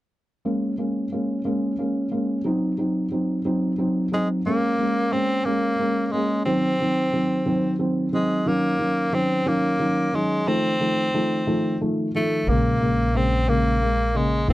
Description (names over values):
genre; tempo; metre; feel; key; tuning
pop; 60 BPM (dotted quarters); 6/8; straight; Bb minor; A4 = 439 Hz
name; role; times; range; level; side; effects
felt-muted upright piano; accompaniment; 0.5-14.5 s; Db3 to Eb4; -22 LUFS; equal; none
growling tenor saxophone; melody; 4.1-14.5 s; Ab3 to C4; -24 LUFS; equal; none
upright bass; bass; 12.5-14.5 s; F1 to Bb1; -23 LUFS; equal; none
room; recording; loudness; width
light reverb; worn, warbling old tape, cassette tape, warbly pitch drift; -20 LUFS; side -16 dB against mid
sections
0.5-4.5 A section; 4.5-14.5 B section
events
none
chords
0.5 Bbm7; 2.5 Cdim; 4.5 Bbm7; 6.5 Cdim; 8.5 Ebm7; 10.5 F7; 12.5 Bbm7